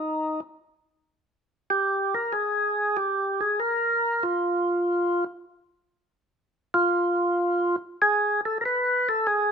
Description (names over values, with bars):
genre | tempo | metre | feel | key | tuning
jazz | 95 BPM | 4/4 | swing 69% on 8ths | unclear | A4 = 441 Hz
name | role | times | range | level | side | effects
percussive tonewheel organ | solo | 0.0-9.5 s | Eb4 to B4 | -22 LUFS | equal | slow rotary speaker
room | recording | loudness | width
moderate stone room reverb, RT60 1.0 s | band playing live in one room | -22 LUFS | side -6 dB against mid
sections
0.0-9.5 A section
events
none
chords
none